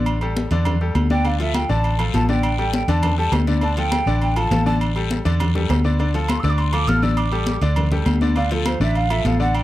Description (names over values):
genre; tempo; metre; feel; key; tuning
latin, salsa; 203 BPM; 4/4; straight; D minor; A4 = 441 Hz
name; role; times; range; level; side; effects
bright grand piano; accompaniment; 0.0-9.6 s; D3 to D5; -25 LUFS; left 3 dB; none
vintage muted fingered electric bass; bass; 0.0-9.6 s; A1 to E2; -20 LUFS; right 1 dB; none
agogo bells and timbales; percussion; 0.1-9.6 s; none; -30 LUFS; right 5 dB; none
congas; percussion; 0.1-9.6 s; none; -24 LUFS; left 2 dB; none
breathy mellow jazz flute; melody; 1.1-9.6 s; A4 to F6; -25 LUFS; right 2 dB; none
guiro; percussion; 1.3-9.6 s; none; -35 LUFS; left 12 dB; none
room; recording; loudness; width
small room ambience; dry, close 1970s-style studio recording; -17 LUFS; side -15 dB against mid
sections
0.0-9.6 A section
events
flute solo 0.0-9.6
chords
0.1 A7sus4; 1.3 Dm; 2.4 A7sus4; 3.6 Dm; 4.8 A7sus4; 6.0 Dm; 7.2 A7sus4; 8.4 Dm